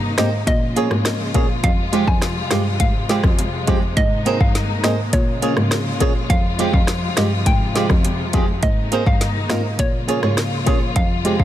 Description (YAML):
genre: dancehall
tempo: 103 BPM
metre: 4/4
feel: straight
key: F minor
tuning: A4 = 443 Hz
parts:
  - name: warm studio string section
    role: sustained chords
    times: 0.0-11.4 s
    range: C3 to F4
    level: -26 LUFS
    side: left 2 dB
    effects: sidechain pumping
  - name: hollow square pluck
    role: melody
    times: 0.2-11.4 s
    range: Db5 to Ab5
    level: -27 LUFS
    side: right 1 dB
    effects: chorus, ping-pong delay
  - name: percussive organ stab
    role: accompaniment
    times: 0.2-11.4 s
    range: Ab3 to Ab4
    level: -26 LUFS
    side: left 2 dB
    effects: chorus
  - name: flamenco guitar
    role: arpeggios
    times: 0.2-11.4 s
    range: Ab3 to Db5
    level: -26 LUFS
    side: right 8 dB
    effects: ping-pong delay
  - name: rich cello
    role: bass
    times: 0.2-11.4 s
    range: F2 to Bb2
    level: -22 LUFS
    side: equal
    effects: none
  - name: afro-pop drum kit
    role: drums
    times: 0.2-11.4 s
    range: hi-hat, kick drum, rim click, snare drum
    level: -19 LUFS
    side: equal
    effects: overdrive
  - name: bongos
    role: percussion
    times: 0.9-11.4 s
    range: none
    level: -32 LUFS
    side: left 7 dB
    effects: none
room: small room ambience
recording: dense, heavily limited modern master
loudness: -16 LUFS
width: side -12 dB against mid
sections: 0.0-11.4 A section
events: none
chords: 0.5 Bbm7; 1.6 Fmadd9; 4.0 Abadd9; 5.1 Bbm7; 6.3 Fmadd9; 8.6 Abadd9; 9.8 Bbm7